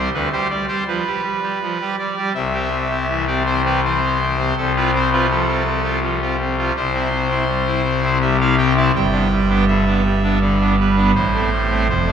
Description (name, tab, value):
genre	classical, chorale-style piece for pipe organ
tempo	81 BPM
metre	3/4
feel	rubato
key	C major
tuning	A4 = 438 Hz
part	pipe organ, trumpet	solo	0.0-12.1 s	F1 to A5	-16 LUFS	equal	none
room	wet church reverb, RT60 3.4 s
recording	none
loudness	-16 LUFS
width	side -8 dB against mid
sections	0.0-12.1 A section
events	none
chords	0.1 G7/D; 2.3 C; 4.6 F/C; 6.7 C; 8.9 G; 11.2 Am7